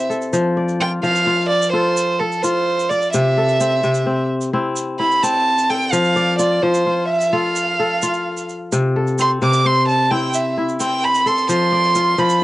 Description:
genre	west african traditional, West African string and xylophone music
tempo	86 BPM (dotted quarters)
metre	12/8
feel	straight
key	C major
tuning	A4 = 440 Hz
part	warm violin	melody	0.0-12.4 s	A4 to D6	-17 LUFS	right 2 dB	cassette tape
part	kora	arpeggios	0.0-12.4 s	C3 to D5	-19 LUFS	left 2 dB	none
part	tube shaker	percussion	0.1-12.4 s	none	-29 LUFS	right 5 dB	none
room	moderate booth ambience, RT60 0.2 s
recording	home recording on cassette, nothing above 11.0 kHz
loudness	-15 LUFS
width	side -16 dB against mid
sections	0.0-12.4 A section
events	violin solo 0.0-12.4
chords	0.3 F; 3.1 C; 5.9 F; 8.7 C; 11.5 F

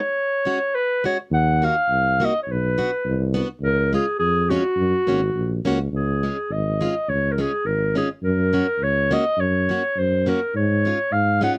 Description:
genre	alpine folk, alpine dance band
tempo	104 BPM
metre	2/4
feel	straight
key	F# major, Db major from 5.9 s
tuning	A4 = 440 Hz
part	mellow clarinet	melody	0.0-11.5 s	F#4 to F#5	-24 LUFS	equal	none
part	picked plugged-in steel-string acoustic guitar	accompaniment	0.5-11.5 s	G#3 to F#4	-26 LUFS	equal	none
part	mellow tuba	bass	1.3-11.5 s	G#1 to Ab2	-25 LUFS	equal	none
room	little or no reverb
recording	close, detailed microphones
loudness	-21 LUFS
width	mono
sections	0.0-5.9 A section; 5.9-11.6 B section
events	none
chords	0.1 F#sus2; 1.3 D#m; 2.5 Bm; 3.6 C#; 4.8 F#; 5.9 Dbadd9; 8.2 Gb; 10.5 Db/Ab

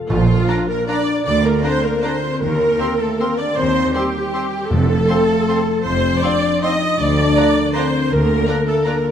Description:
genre	classical, orchestral ballroom waltz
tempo	157 BPM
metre	3/4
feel	uneven beats, rubato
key	Bb major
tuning	A4 = 442 Hz
part	concert harp	arpeggios	0.0-9.1 s	F2 to A5	-24 LUFS	left 4 dB	none
part	large flute ensemble	second line	0.1-9.1 s	F4 to Eb5	-25 LUFS	right 1 dB	none
part	rich studio viola section	accompaniment	0.1-9.1 s	F4 to Eb5	-20 LUFS	right 1 dB	none
part	dark French horn section	sustained chords	0.1-9.1 s	F3 to Eb4	-22 LUFS	left 3 dB	none
part	rich studio double bass section	bass	0.1-8.4 s	F1 to Eb2	-23 LUFS	right 3 dB	none
part	warm studio cello section	bass	0.1-8.4 s	D2 to Bb2	-25 LUFS	right 4 dB	none
part	timpani	percussion	0.1-0.6, 4.7-5.2 s	F2 to Bb2	-23 LUFS	equal	none
part	rich studio violin section	melody	0.5-8.9 s	Bb5 to C6	-36 LUFS	left 2 dB	none
part	clear clarinet	second line	0.5-9.0 s	C4 to D4	-31 LUFS	equal	none
part	rich studio violin section	second line	0.5-8.9 s	F4 to D5	-33 LUFS	left 2 dB	none
part	warm oboe	second line	0.5-9.0 s	Bb5 to C6	-30 LUFS	right 2 dB	none
room	moderate scoring stage reverb, RT60 1.9 s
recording	none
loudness	-15 LUFS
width	side -8 dB against mid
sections	0.1-9.1 A section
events	none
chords	0.1 Bb; 1.3 Bb/D; 2.4 Cm7/Eb; 4.7 F; 7.0 Bb/D

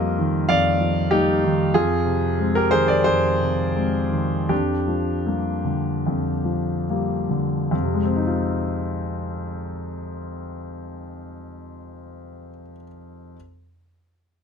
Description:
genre	neoclassical minimalist piano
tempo	69-96 BPM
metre	4/4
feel	rubato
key	F dorian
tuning	A4 = 439 Hz
part	warm concert grand piano	solo	0.0-13.4 s	F2 to F5	-20 LUFS	equal	none
room	light reverb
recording	close, detailed microphones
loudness	-19 LUFS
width	side -6 dB against mid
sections	0.0-7.7 A section; 7.7-11.1 B section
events	slowing down 0.5-7.7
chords	0.0 Eb/F; 1.7 Fm7; 4.5 Gm/F; 7.7 Fm7

